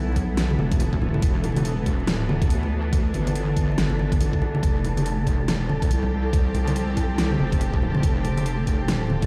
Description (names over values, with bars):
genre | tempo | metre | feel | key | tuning
deep dubstep | 141 BPM | 4/4 | swing 60% on 16ths, half-time | E phrygian | A4 = 440 Hz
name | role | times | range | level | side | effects
bowed-like drone | sustained chords | 0.0-9.3 s | E3 to G4 | -34 LUFS | equal | built-in reverb
wobble bass | bass | 0.0-9.3 s | E1 to D2 | -27 LUFS | equal | chorus
wind-like tuned noise texture | texture | 0.0-9.3 s | A4 | -36 LUFS | equal | built-in reverb
dubstep drum kit | drums | 0.2-9.3 s | hi-hat, snare drum | -32 LUFS | equal | overdrive
electronic kick drum | drums | 0.2-9.3 s | none | -25 LUFS | equal | overdrive
congas | percussion | 0.5-9.2 s | none | -31 LUFS | equal | none
room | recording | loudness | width
light reverb, digital ambience | played on a big sound system in a bare room, large studio reverb, vinyl crackle | -23 LUFS | mono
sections
0.0-9.3 A section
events
none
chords
0.0 Em7; 4.6 F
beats
0.37 0.80 | 1.23 1.65 2.08 2.50 | 2.93 3.35 3.78 4.20 | 4.63 5.05 5.48 5.91 | 6.33 6.76 7.18 7.61 | 8.03 8.46 8.88